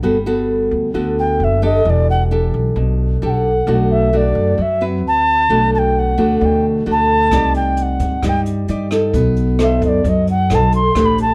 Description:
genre	bossa nova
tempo	132 BPM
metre	4/4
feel	straight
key	unclear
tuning	A4 = 445 Hz
part	nylon-string guitar	accompaniment	0.0-11.3 s	B2 to D5	-20 LUFS	equal	none
part	upright bass	bass	0.0-11.3 s	E1 to G2	-21 LUFS	equal	none
part	alto ocarina	melody	1.2-11.3 s	D5 to C6	-20 LUFS	equal	plate reverb
part	jazz brush drum kit	drums	7.3-11.3 s	hi-hat, kick drum, rim click	-26 LUFS	equal	none
room	light reverb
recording	none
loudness	-16 LUFS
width	mono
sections	0.0-11.3 A section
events	ocarina solo 0.0-11.3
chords	0.0 Gmaj9; 1.9 Em11; 3.7 Bm7; 5.0 D6; 5.5 Bm7; 7.3 Cmadd9; 9.1 B7b9

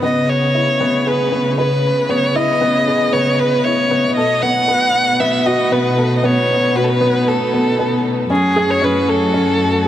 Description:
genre	electronica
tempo	116 BPM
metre	4/4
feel	straight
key	C# minor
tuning	A4 = 440 Hz
part	dark violin	melody	0.0-9.9 s	G#4 to F#5	-16 LUFS	equal	none
part	rich string quartet	sustained chords	0.0-9.9 s	C#3 to D#5	-30 LUFS	equal	none
part	dark upright piano	riff	0.0-9.9 s	B3 to B4	-18 LUFS	equal	none
part	dark studio cello section	bass	0.0-9.9 s	F#2 to C#3	-21 LUFS	equal	none
room	moderate huge ambient reverb, RT60 5.0 s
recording	none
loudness	-13 LUFS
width	side -11 dB against mid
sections	0.0-9.9 A section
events	none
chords	0.0 C#m7; 4.2 B7; 8.3 F#madd9

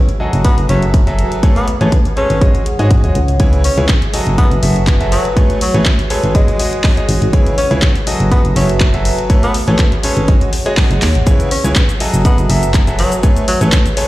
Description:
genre	piano house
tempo	122 BPM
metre	4/4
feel	swing 54% on 16ths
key	unclear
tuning	A4 = 439 Hz
part	warbly tape-like pad	texture	0.0-14.1 s	F#4 to F#5	-24 LUFS	right 1 dB	chorus, built-in reverb, sidechain pumping
part	house drum kit	drums	0.1-14.1 s	handclaps, hi-hat, shaker	-21 LUFS	left 1 dB	small room ambience
part	bright grand piano	riff	0.2-14.1 s	C#3 to E5	-19 LUFS	equal	sidechain pumping, digital delay
part	solid FM bass	bass	0.3-13.7 s	F#1 to G#2	-14 LUFS	equal	tube saturation, sidechain pumping
part	breathy tenor saxophone	melody	0.4-13.6 s	F#3 to C#4	-22 LUFS	left 1 dB	digital delay
part	electronic kick drum	drums	0.4-13.8 s	none	-12 LUFS	equal	small room ambience
room	digital ambience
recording	played on a big sound system in a bare room, large studio reverb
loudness	-10 LUFS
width	side -16 dB against mid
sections	0.0-14.1 A section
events	drum fill 11.0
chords	0.2 F#m9; 1.4 Amaj9; 2.4 G#7sus4; 3.4 C#m7; 4.1 F#m9; 5.4 Amaj9; 6.3 G#7sus4; 7.3 C#m7; 8.1 F#m9; 9.3 Amaj9; 10.3 G#7sus4; 11.3 C#m7; 12.0 F#m9; 13.2 Amaj9

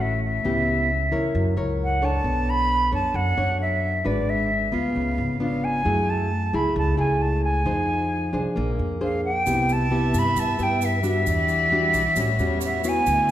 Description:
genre	bossa nova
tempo	133 BPM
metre	4/4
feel	straight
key	unclear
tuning	A4 = 438 Hz
part	reedy silver concert flute	melody	0.0-13.3 s	D5 to B5	-24 LUFS	right 1 dB	none
part	nylon-string guitar	accompaniment	0.0-13.3 s	A2 to C#5	-25 LUFS	left 1 dB	none
part	upright bass	bass	0.0-13.3 s	G#1 to G2	-26 LUFS	equal	none
part	dark chamber violin section	sustained chords	9.5-13.3 s	G3 to E5	-34 LUFS	equal	none
part	tube shaker	percussion	9.5-13.3 s	none	-38 LUFS	right 8 dB	none
room	wet recital hall reverb, RT60 1.8 s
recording	recorded in a church or concert hall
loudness	-20 LUFS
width	side -12 dB against mid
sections	0.0-13.3 A section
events	none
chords	0.4 C#m7b5; 1.3 F#7; 2.2 Bm9; 4.1 G#m7b5; 5.0 C#7b9; 5.9 F#m9; 7.7 Fm7; 8.6 Bb9; 9.5 Cmaj7; 11.3 Em9; 12.2 A13

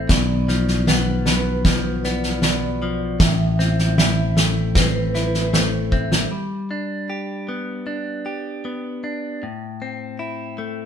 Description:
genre	post-rock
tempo	77 BPM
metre	4/4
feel	straight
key	unclear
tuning	A4 = 441 Hz
part	direct-recorded clean electric guitar	arpeggios	0.0-10.9 s	A2 to G4	-26 LUFS	left 3 dB	none
part	vibraphone with medium mallets	arpeggios	0.0-6.3 s	B4 to E5	-30 LUFS	right 5 dB	none
part	picked electric bass	bass	0.0-6.3 s	A1 to B1	-21 LUFS	equal	none
part	loose indie drum kit	drums	0.1-6.3 s	kick drum, snare drum	-19 LUFS	equal	none
room	moderate stone room reverb, RT60 1.1 s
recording	band playing live in one room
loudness	-18 LUFS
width	side -8 dB against mid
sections	0.0-6.3 A section; 6.3-10.9 A section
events	drum fill 5.9-6.3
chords	0.1 Bdim; 3.2 Amadd9; 6.3 G; 9.4 Am

